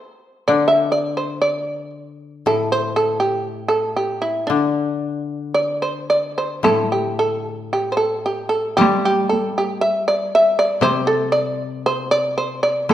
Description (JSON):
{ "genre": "japanese traditional, Japanese chamber music", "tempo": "54-61 BPM", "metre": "2/4", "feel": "rubato", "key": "D suspended pentatonic", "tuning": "A4 = 439 Hz", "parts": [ { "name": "shamisen", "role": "melody", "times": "0.5-12.9 s", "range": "D4 to E5", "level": "-18 LUFS", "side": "right 1 dB", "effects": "none" }, { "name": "koto", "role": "accompaniment", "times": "0.5-12.9 s", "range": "A2 to G3", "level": "-25 LUFS", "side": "left 6 dB", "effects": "none" }, { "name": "taiko ensemble", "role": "percussion", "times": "6.6-12.9 s", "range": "none", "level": "-22 LUFS", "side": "right 2 dB", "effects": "none" } ], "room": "wet recital hall reverb, RT60 1.4 s", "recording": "none", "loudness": "-17 LUFS", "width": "side -12 dB against mid", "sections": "0.0-6.7 A section; 6.7-12.9 B section", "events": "none", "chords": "none" }